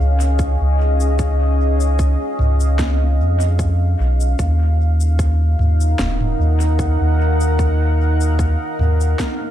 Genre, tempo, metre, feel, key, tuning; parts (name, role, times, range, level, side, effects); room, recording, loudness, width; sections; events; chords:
ambient dub; 75 BPM; 4/4; swing 53% on 16ths; Eb minor; A4 = 440 Hz
deep dark ambient pad; sustained chords; 0.0-9.5 s; Db4 to Gb5; -22 LUFS; left 1 dB; chorus, built-in reverb, vintage 12-bit sampler grit
soft dub sub bass; bass; 0.0-9.1 s; Eb1 to F2; -15 LUFS; equal
organic electronic drum kit; drums; 0.2-9.4 s; cabasa, snare drum, toms; -27 LUFS; equal; overdrive, dub echo
electronic kick drum; drums; 0.4-9.4 s; -23 LUFS; equal; overdrive
little or no reverb; echo-heavy mix; -14 LUFS; side -12 dB against mid
0.0-9.5 A section
0.0 Db; 4.4 Ebm7